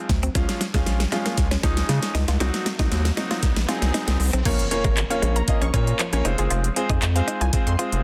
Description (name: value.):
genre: dance-pop.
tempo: 117 BPM.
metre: 4/4.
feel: straight.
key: Bb minor.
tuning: A4 = 438 Hz.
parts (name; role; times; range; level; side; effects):
clear concert grand piano; accompaniment; 0.0-8.0 s; F3 to Eb5; -29 LUFS; equal; sidechain pumping, low-pass filter.
riser and impact; sound effects; 0.0-6.5 s; none; -38 LUFS; equal; none.
direct-recorded clean electric guitar; riff; 0.1-7.9 s; Ab3 to F4; -34 LUFS; equal; subtle chorus, low-pass filter.
round analog bass; bass; 0.1-8.0 s; F1 to Db3; -25 LUFS; equal; sidechain pumping.
pop drum kit; drums; 0.1-8.0 s; crash cymbal, handclaps, hi-hat, kick drum, snare drum; -27 LUFS; equal; none.
unison pluck; arpeggios; 4.5-7.8 s; F3 to Db6; -35 LUFS; equal; sidechain pumping, tape echo.
room: light reverb, digital ambience.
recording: dense, heavily limited modern master.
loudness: -22 LUFS.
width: mono.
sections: 0.0-4.5 A section; 4.5-8.0 B section.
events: build-up 0.0-4.5; drum fill 0.0-4.5; drop 4.5-8.0; impact 4.5-6.5; grand piano fill 7.8.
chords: 0.4 Db; 2.4 Cdim; 4.5 Bbm; 6.2 Fm.